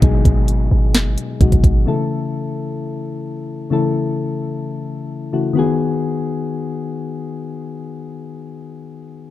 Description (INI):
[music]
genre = hip hop, trap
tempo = 130 BPM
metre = 4/4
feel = half-time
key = G# phrygian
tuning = A4 = 441 Hz
[part]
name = soft electric-piano-like synth keys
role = accompaniment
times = 0.0-9.3 s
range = B2 to A4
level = -21 LUFS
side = left 4 dB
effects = chorus
[part]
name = warm 808-style bass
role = bass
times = 0.0-1.9 s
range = F#1 to G#1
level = -15 LUFS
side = equal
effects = none
[part]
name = trap drum kit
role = drums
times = 0.0-1.7 s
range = handclaps, hi-hat, kick drum, snare drum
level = -15 LUFS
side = right 1 dB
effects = none
[part]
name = downlifter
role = sound effects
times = 0.0-1.9 s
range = none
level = -36 LUFS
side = right 1 dB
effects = none
[sound]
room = little or no reverb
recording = dark, warm production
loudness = -17 LUFS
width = side -14 dB against mid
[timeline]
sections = 0.0-5.6 A section; 5.6-9.3 B section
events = none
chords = 0.0 G#m7; 1.9 A; 5.6 G#m7